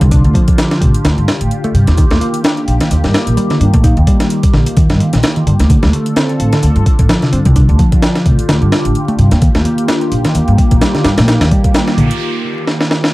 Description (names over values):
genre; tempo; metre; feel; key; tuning
breakbeat, breaks; 129 BPM; 4/4; swing 56% on 16ths; unclear; A4 = 441 Hz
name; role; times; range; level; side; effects
phased analog pad; sustained chords; 0.0-13.1 s; D3 to A4; -18 LUFS; equal; phaser, chorus, sidechain pumping
picked electric bass; riff; 0.0-12.1 s; C3 to Eb4; -16 LUFS; equal; tape echo
upright bass; bass; 0.0-12.1 s; A1 to G2; -13 LUFS; equal; none
breakbeat sampler-style drum kit; drums; 0.0-13.1 s; hi-hat, kick drum, snare drum; -13 LUFS; equal; none
electronic hi-hat; drums; 0.0-12.2 s; none; -31 LUFS; left 1 dB; none
noise sweep; sound effects; 11.6-13.1 s; none; -25 LUFS; right 3 dB; none
room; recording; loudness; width
light reverb; dark, warm production, vinyl crackle; -9 LUFS; side -19 dB against mid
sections
0.0-13.1 A section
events
noise sweep 11.6-13.1; break 12.2-13.1; drum fill 12.7-13.1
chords
0.0 Dm; 2.0 Ebadd9; 5.7 Dm; 9.4 Ebadd9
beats
| 0.12 0.58 1.05 1.51 | 1.98 2.44 2.91 3.37 | 3.84 4.30 4.77 5.23 | 5.70 6.16 6.63 7.09 | 7.56 8.02 8.49 8.96 | 9.42 9.88 10.35 10.81 | 11.28 11.74 12.21 12.68